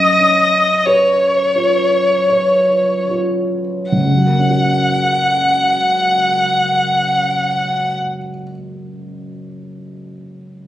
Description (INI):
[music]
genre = classical, romantic duo for violin and grand piano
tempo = 35-47 BPM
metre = 3/4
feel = rubato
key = F# major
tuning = A4 = 441 Hz
[part]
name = dark violin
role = melody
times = 0.0-7.9 s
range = C#5 to F#5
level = -14 LUFS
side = left 1 dB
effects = none
[part]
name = dark baby grand piano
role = accompaniment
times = 0.0-10.7 s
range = F#1 to C#5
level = -20 LUFS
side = right 1 dB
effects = none
[sound]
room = wet recital hall reverb, RT60 1.3 s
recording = recorded on a phone in the room, studio ambience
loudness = -13 LUFS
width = side -13 dB against mid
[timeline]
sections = 0.0-3.9 A section; 3.9-9.0 B section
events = slowing down 0.0-3.9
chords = 0.0 C#7/F#; 3.9 F#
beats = 0.85 2.29 | 3.94 5.60 7.29